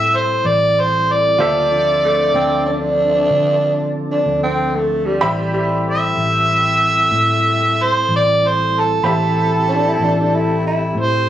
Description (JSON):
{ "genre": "blues", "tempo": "63 BPM (dotted quarters)", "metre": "12/8", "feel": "straight", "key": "A minor", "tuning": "A4 = 440 Hz", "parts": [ { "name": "overdriven harmonica", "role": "melody", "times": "0.0-11.3 s", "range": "A4 to E5", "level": "-15 LUFS", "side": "right 1 dB", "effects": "none" }, { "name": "bright upright piano", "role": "accompaniment", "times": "0.0-11.3 s", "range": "F4 to B5", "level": "-24 LUFS", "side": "right 2 dB", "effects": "none" }, { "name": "mellow tonewheel organ", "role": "sustained chords", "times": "0.0-11.3 s", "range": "C#3 to A4", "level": "-24 LUFS", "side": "left 4 dB", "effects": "slow rotary speaker" }, { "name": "vintage muted fingered electric bass", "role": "bass", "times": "0.0-11.3 s", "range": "A1 to D3", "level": "-22 LUFS", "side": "equal", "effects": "none" }, { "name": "growling tenor saxophone", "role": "second line", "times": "2.0-11.0 s", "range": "G3 to E4", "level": "-18 LUFS", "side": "right 1 dB", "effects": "none" } ], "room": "light reverb, small room ambience", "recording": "recorded on a phone in the room, studio reverb", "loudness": "-14 LUFS", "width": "side -11 dB against mid", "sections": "0.0-11.3 A section", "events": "none", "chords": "0.0 Am7; 1.4 Dm7; 5.2 Am7" }